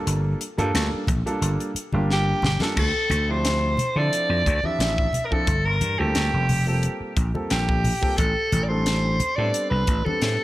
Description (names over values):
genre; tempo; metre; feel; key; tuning
electric jazz fusion; 89 BPM; 4/4; swing 54% on 16ths; D minor; A4 = 440 Hz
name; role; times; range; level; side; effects
dark grand piano; accompaniment; 0.0-10.4 s; F3 to A4; -29 LUFS; right 1 dB; none
vintage slap bass; bass; 0.1-10.4 s; F1 to D3; -23 LUFS; equal; none
crisp fusion drum kit; drums; 0.1-10.4 s; crash cymbal, hi-hat, kick drum, snare drum; -27 LUFS; equal; none
congas; percussion; 0.6-10.2 s; none; -30 LUFS; left 1 dB; none
growling soprano saxophone; melody; 2.1-10.4 s; G4 to E5; -24 LUFS; equal; none
room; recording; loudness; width
light reverb, studio reverb; none; -20 LUFS; side -16 dB against mid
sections
0.0-2.8 A section; 2.8-10.4 B section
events
drum fill 2.1-2.8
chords
0.0 Gm9; 2.8 Dm11; 5.5 Gm11; 8.2 Am11